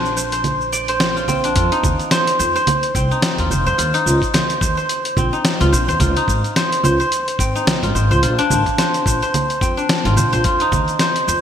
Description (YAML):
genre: organic downtempo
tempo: 108 BPM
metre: 4/4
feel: swing 57% on 16ths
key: unclear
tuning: A4 = 438 Hz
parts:
  - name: guzheng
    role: arpeggios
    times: 0.0-11.4 s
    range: C4 to D5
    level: -18 LUFS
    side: equal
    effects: digital delay
  - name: upright bass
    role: bass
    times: 0.0-11.4 s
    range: F1 to Bb2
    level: -20 LUFS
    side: equal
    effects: sidechain pumping
  - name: dusty soul sampler-style drum kit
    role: drums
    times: 0.1-11.4 s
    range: congas, hi-hat, shaker, snare drum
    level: -21 LUFS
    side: equal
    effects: gated reverb
  - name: electronic kick drum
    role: drums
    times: 1.6-10.9 s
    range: none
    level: -22 LUFS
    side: equal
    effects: none
room: moderate lush hall reverb, RT60 2.7 s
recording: bright 1980s-style digital production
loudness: -15 LUFS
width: side -9 dB against mid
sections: 0.0-1.6 A section; 1.6-11.4 B section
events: filter sweep on guzheng 0.0-1.6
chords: 0.0 Bbadd9; 1.6 F5; 3.8 Ebsus2; 6.0 Dbmaj9; 8.2 Bbadd9; 10.4 F5